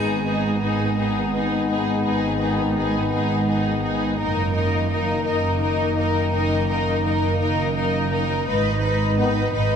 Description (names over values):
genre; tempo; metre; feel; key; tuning
cinematic; 56 BPM (dotted quarters); 6/8; straight; G# minor; A4 = 440 Hz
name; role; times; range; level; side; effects
dark studio violin section; melody; 0.0-9.8 s; B4 to D#5; -32 LUFS; left 2 dB; none
rich studio violin section; second line; 0.0-9.8 s; G#4 to B4; -27 LUFS; left 3 dB; none
clear symphonic viola section; accompaniment; 0.0-9.8 s; D#4; -27 LUFS; left 1 dB; none
warm French horn section; sustained chords; 0.0-9.3 s; D#3 to B3; -26 LUFS; left 4 dB; none
dark symphonic double bass section; bass; 0.0-9.8 s; F#1 to G#1; -27 LUFS; right 4 dB; none
warm symphonic cello section; bass; 0.0-9.8 s; F#2 to G#2; -26 LUFS; right 2 dB; none
room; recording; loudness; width
wet scoring stage reverb, RT60 1.8 s; none; -19 LUFS; side -7 dB against mid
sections
0.0-9.8 A section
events
build-up 0.0-9.8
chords
0.0 G#m; 4.2 D#m/F#; 8.5 G#m